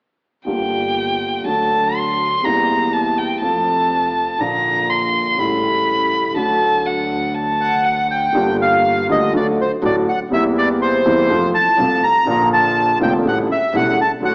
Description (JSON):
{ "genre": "tango", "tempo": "122 BPM", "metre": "4/4", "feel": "rubato", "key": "G minor", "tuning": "A4 = 440 Hz", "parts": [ { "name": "warm grand piano", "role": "accompaniment", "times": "0.4-14.3 s", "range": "E1 to F#4", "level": "-22 LUFS", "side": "equal", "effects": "none" }, { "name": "dark violin", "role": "second line", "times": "0.5-8.3 s", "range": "F#5 to C6", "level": "-20 LUFS", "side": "equal", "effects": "none" }, { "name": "dark double bass", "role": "bass", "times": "0.5-14.3 s", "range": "E1 to F2", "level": "-30 LUFS", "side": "equal", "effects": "none" }, { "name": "bandoneon", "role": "melody", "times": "7.6-14.3 s", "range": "C5 to Bb5", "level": "-19 LUFS", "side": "equal", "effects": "none" } ], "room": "wet recital hall reverb, RT60 1.7 s", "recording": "worn, warbling old tape, cassette tape, warbly pitch drift, AM radio sound", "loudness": "-17 LUFS", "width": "mono", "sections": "0.5-8.3 A section; 8.3-14.3 B section", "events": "none", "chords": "0.5 Gm7; 1.5 D; 2.4 C7/E; 3.4 F; 4.4 Bb; 5.4 A7; 6.4 D; 8.3 Gm7; 9.3 D; 10.3 C7/E; 11.3 F; 12.3 Bb; 13.3 A7" }